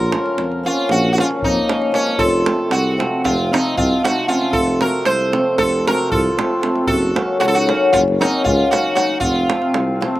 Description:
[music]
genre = balkan folk, Balkan wedding band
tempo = 230 BPM (eighths)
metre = 9/8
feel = straight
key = F phrygian dominant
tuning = A4 = 440 Hz
[part]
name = sitar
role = melody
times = 0.0-10.2 s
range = Db4 to C5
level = -19 LUFS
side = right 1 dB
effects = slapback echo
[part]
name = dark clarinet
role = second line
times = 0.0-10.2 s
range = Bb3 to A4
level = -23 LUFS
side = equal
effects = slapback echo
[part]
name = mellow tuba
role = bass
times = 0.0-10.1 s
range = F1 to F2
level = -21 LUFS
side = equal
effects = none
[part]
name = hammered dulcimer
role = accompaniment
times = 0.1-10.2 s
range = C3 to Db4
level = -20 LUFS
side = left 2 dB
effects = slapback echo
[part]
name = davul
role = percussion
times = 0.1-10.2 s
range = none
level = -25 LUFS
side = right 3 dB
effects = none
[sound]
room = light reverb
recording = recorded outdoors, with no room sound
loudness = -14 LUFS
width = side -15 dB against mid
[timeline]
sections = 0.0-10.2 A section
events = none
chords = 0.0 Bbm; 2.2 F; 6.9 Gb; 9.2 F

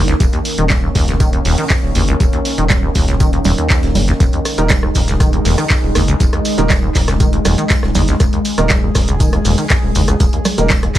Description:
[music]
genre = acid house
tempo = 120 BPM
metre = 4/4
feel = straight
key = Eb minor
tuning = A4 = 440 Hz
[part]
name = warbly tape-like pad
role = sustained chords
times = 0.0-11.0 s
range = Eb3 to Ab4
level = -21 LUFS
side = equal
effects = chorus, built-in reverb, sidechain pumping
[part]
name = deep acid bass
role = riff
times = 0.0-11.0 s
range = Db2 to Eb3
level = -18 LUFS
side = equal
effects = lush chorus, cassette tape, sidechain pumping, digital delay
[part]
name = round analog bass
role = bass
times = 0.0-11.0 s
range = Eb1 to Gb1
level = -19 LUFS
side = equal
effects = sidechain pumping
[part]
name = compact cocktail drum kit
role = drums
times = 0.1-11.0 s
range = hi-hat, snare drum, tambourine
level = -30 LUFS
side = right 2 dB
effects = high-pass filter on hats, high-pass filter on snare, high-pass filter on perc, high-pass filter on room
[part]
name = punchy analog drum machine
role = drums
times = 0.1-11.0 s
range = congas, handclaps, hi-hat, rim click, shaker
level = -19 LUFS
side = right 2 dB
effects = none
[part]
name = electronic kick drum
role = drums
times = 0.2-11.0 s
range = none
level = -15 LUFS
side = equal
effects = overdrive
[part]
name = warm baby grand piano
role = stabs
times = 4.6-10.7 s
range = Bb3 to Bb4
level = -21 LUFS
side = right 4 dB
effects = digital delay
[sound]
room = light reverb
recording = none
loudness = -12 LUFS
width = side -13 dB against mid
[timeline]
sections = 0.0-11.0 A section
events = none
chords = 0.0 Eb5

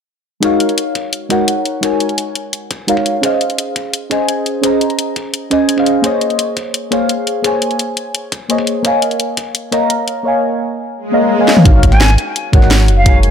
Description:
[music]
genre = liquid drum and bass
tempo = 171 BPM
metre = 4/4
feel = straight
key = unclear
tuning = A4 = 441 Hz
[part]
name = deep mellow chord stab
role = accompaniment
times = 0.4-13.3 s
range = Ab3 to Bb5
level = -15 LUFS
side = left 1 dB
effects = chorus, phaser
[part]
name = electronic kick drum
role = drums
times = 0.4-13.1 s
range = none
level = -15 LUFS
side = equal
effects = high-pass filter on kick, high-pass filter on room
[part]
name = garage drum kit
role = drums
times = 0.4-13.3 s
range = hi-hat, snare drum, toms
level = -16 LUFS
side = left 1 dB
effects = none
[part]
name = swell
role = sound effects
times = 11.1-11.7 s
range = none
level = -17 LUFS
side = right 2 dB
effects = none
[part]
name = warm sub bass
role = bass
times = 11.7-13.3 s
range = Gb1 to Ab1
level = -11 LUFS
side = equal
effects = tube saturation
[part]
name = silver concert flute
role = melody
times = 11.9-13.2 s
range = F5 to Ab5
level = -18 LUFS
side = equal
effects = ping-pong delay
[sound]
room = light reverb, digital ambience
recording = none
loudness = -12 LUFS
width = side -8 dB against mid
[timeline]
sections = 0.4-11.7 A section; 11.7-13.3 B section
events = swell 11.1-11.7; drum fill 11.5; drop 11.7-13.3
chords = 0.4 Ab13sus4; 3.2 Dbmaj9; 6.0 Bbm11; 8.8 Eb9sus4/Bb; 11.7 Ab13sus4

